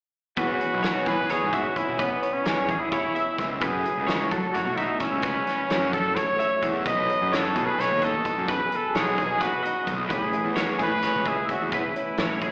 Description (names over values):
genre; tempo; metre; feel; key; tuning
math rock and midwest emo; 259 BPM (eighths); 7/8; straight; unclear; A4 = 439 Hz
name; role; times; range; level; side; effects
clear trumpet; melody; 0.4-12.5 s; B3 to D#5; -28 LUFS; equal; slapback echo
electric guitar through a small old amp; accompaniment; 0.4-12.5 s; F#2 to C#5; -35 LUFS; equal; tremolo, slapback echo
twelve-string electric guitar; arpeggios; 0.4-12.5 s; G#4 to E5; -33 LUFS; equal; analog chorus, slapback echo
fuzz picked electric bass; bass; 0.4-12.5 s; A1 to F#3; -32 LUFS; equal; overdrive
loose indie drum kit; drums; 0.4-12.5 s; hi-hat, kick drum, snare drum; -34 LUFS; equal; none
room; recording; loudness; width
moderate club reverb, RT60 0.5 s; live gig heard through the venue's PA, recital hall reverb, AM radio sound; -25 LUFS; mono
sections
0.4-12.5 A section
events
none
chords
0.4 E69; 3.6 F#m7; 6.9 B13; 10.1 Amaj9